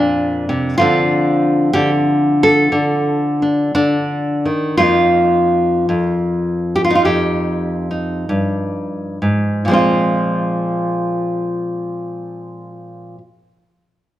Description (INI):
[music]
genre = solo jazz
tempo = 43-63 BPM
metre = 4/4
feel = swing 68% on 8ths, rubato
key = Bb mixolydian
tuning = A4 = 439 Hz
[part]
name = nylon-string guitar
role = solo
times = 0.0-13.2 s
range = F2 to A4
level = -14 LUFS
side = equal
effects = none
[sound]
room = wet large studio reverb, RT60 1.4 s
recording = band playing live in one room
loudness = -14 LUFS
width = side -13 dB against mid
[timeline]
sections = 0.0-9.7 A section; 9.7-14.2 B section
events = slowing down 0.8-9.7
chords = 0.0 Fsus4; 0.8 Dm7; 4.8 F9sus4; 9.7 Bbsus2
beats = | 0.80 1.76 2.74 3.74 | 4.78 5.88 7.04 8.30 | 9.65 11.04 12.41